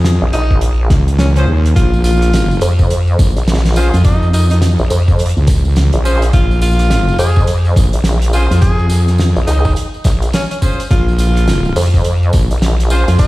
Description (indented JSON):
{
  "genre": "glitch hop",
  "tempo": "105 BPM",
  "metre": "4/4",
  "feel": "swing 61% on 16ths",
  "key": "Bb minor",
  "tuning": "A4 = 442 Hz",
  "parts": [
    { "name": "wobble bass", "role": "bass", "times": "0.0-13.3 s", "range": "Bb1 to F2", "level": "-12 LUFS", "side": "equal", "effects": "chorus" },
    { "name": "damped 70s drum kit", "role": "drums", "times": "0.0-13.3 s", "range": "hi-hat, rim click, snare drum", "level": "-21 LUFS", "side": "right 1 dB", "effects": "small room reverb" },
    { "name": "vowel-sweep wobble bass", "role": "bass", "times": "0.2-13.1 s", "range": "Bb1 to F2", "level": "-12 LUFS", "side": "equal", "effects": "chorus, tube saturation" },
    { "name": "clear tenor saxophone", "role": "melody", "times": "0.3-13.3 s", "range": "Db4 to Ab4", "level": "-21 LUFS", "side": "left 1 dB", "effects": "digital delay" },
    { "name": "electronic kick drum", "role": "drums", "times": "0.5-13.3 s", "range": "none", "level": "-13 LUFS", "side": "equal", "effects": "overdrive, small room reverb" },
    { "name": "bright horn section", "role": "stabs", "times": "1.4-13.1 s", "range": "Db4 to C5", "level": "-23 LUFS", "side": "equal", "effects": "vintage 12-bit sampler grit, sidechain pumping" },
    { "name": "tambourine", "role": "percussion", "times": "1.8-13.3 s", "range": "none", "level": "-29 LUFS", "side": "right 2 dB", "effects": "none" }
  ],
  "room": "small room reverb",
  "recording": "played on a big sound system in a bare room, stone room reverb, vinyl crackle",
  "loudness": "-10 LUFS",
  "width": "side -18 dB against mid",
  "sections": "0.0-13.3 A section",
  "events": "none",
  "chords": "0.0 Bbm",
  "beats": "0.05 0.62 1.19 | 1.76 2.33 2.90 3.48 | 4.05 4.62 5.19 5.76 | 6.33 6.91 7.48 8.05 | 8.62 9.19 9.76 10.33 | 10.90 11.48 12.05 12.62 | 13.19"
}